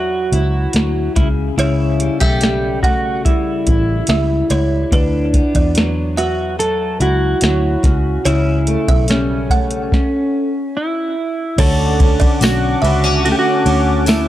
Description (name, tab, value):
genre	indie pop, bedroom pop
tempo	72 BPM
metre	4/4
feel	straight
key	D major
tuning	A4 = 440 Hz
part	clean electric guitar	melody	0.0-14.3 s	C#4 to A4	-20 LUFS	right 1 dB	analog chorus, analog delay
part	buzzing kalimba	second line	0.0-13.6 s	B4 to F#5	-24 LUFS	right 3 dB	analog chorus, analog delay
part	fingerpicked steel-string acoustic guitar	accompaniment	0.0-14.3 s	C#3 to F#4	-21 LUFS	left 3 dB	lush chorus, vibrato effect
part	vintage muted fingered electric bass	bass	0.0-14.3 s	A1 to E2	-18 LUFS	equal	none
part	soft vintage rhythm box	drums	0.3-14.3 s	crash cymbal, hi-hat, kick drum, ride cymbal, snare drum	-16 LUFS	equal	none
part	lush unison pad	sustained chords	11.6-14.3 s	C#4 to D6	-21 LUFS	right 1 dB	chorus
part	tambourine	percussion	12.4-14.3 s	none	-27 LUFS	left 4 dB	none
room	digital ambience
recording	dry, gritty hardware recording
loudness	-13 LUFS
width	side -13 dB against mid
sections	0.0-11.6 A section; 11.6-14.3 B section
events	stop 9.9-11.6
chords	0.0 D69; 1.2 A7; 4.9 D69; 7.8 A7; 11.6 Dmaj7